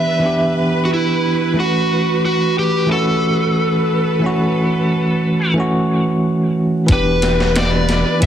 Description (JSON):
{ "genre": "trip hop", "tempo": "90 BPM", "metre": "4/4", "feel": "straight", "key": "unclear", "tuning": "A4 = 440 Hz", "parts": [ { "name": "overdriven slide guitar", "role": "melody", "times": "0.0-8.3 s", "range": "E4 to E5", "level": "-19 LUFS", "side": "equal", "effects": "tape echo" }, { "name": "bell-like tine electric piano", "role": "accompaniment", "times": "0.0-8.3 s", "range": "E3 to G4", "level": "-17 LUFS", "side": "right 1 dB", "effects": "tremolo, tape echo" }, { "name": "rich symphonic violin section", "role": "sustained chords", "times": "0.0-8.3 s", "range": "B4", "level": "-25 LUFS", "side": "equal", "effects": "none" }, { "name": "round analog bass", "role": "bass", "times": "6.9-8.3 s", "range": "E1", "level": "-20 LUFS", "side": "equal", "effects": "none" }, { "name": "boom bap sampler-style drum kit", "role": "drums", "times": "6.9-8.3 s", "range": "hi-hat, kick drum, snare drum", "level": "-17 LUFS", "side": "equal", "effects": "none" } ], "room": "moderate echo chamber reverb, RT60 2.1 s", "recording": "heavily compressed radio sound, multiband compression", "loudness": "-14 LUFS", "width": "side -9 dB against mid", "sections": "0.0-6.9 A section; 6.9-8.3 B section", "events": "none", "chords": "0.0 Em7; 1.6 F#m7; 6.9 Em7", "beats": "0.23 0.89 | 1.56 2.23 2.89 3.56 | 4.23 4.89 5.56 6.23 | 6.89 7.56 8.23" }